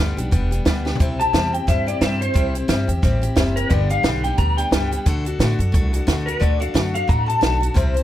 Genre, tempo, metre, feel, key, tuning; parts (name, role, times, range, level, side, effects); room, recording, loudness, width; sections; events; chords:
rockabilly; 177 BPM; 4/4; swing 58% on 8ths; A4 = 445 Hz
picked steel-string acoustic guitar; accompaniment; 0.0-8.0 s; G2 to C5; -25 LUFS; left 3 dB; plate reverb
upright bass; bass; 0.0-8.0 s; E1 to A2; -22 LUFS; equal
compact cocktail drum kit; drums; 0.2-8.0 s; hi-hat, kick drum, snare drum, toms; -20 LUFS; right 1 dB
electric guitar through a small old amp; melody; 1.2-8.0 s; Bb4 to Bb5; -23 LUFS; left 2 dB; ensemble chorus, plate reverb, tape echo
little or no reverb; -17 LUFS; side -12 dB against mid
0.0-8.0 A section
drum fill 0.8
0.0 G; 1.0 C; 3.7 G; 5.1 D